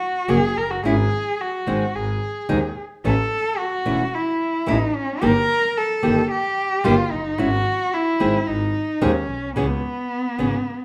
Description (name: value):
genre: tango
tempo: 110 BPM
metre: 4/4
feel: rubato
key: C# minor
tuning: A4 = 440 Hz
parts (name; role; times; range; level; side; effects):
- warm cello; second line; 0.0-10.8 s; B3 to A#4; -25 LUFS; equal; none
- nylon-string guitar; accompaniment; 0.3-10.6 s; C#3 to G#4; -23 LUFS; equal; none
- clear double bass; bass; 0.3-10.6 s; E1 to D#2; -27 LUFS; equal; none
room: moderate large studio reverb, RT60 0.8 s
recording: none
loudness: -21 LUFS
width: mono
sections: 0.0-10.8 A section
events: cello solo 0.0-10.8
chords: 0.0 F#5; 0.8 N.C.; 1.9 G#5; 3.0 A; 5.2 D#/G; 7.4 C#m/G# (rootless); 8.5 G#5; 9.6 C#m7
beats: 0.30 | 0.85 1.39 1.94 2.49 | 3.04 3.59 4.13 4.68 | 5.23 5.77 6.31 6.86 | 7.40 7.94 8.48 9.03 | 9.57 10.11 10.66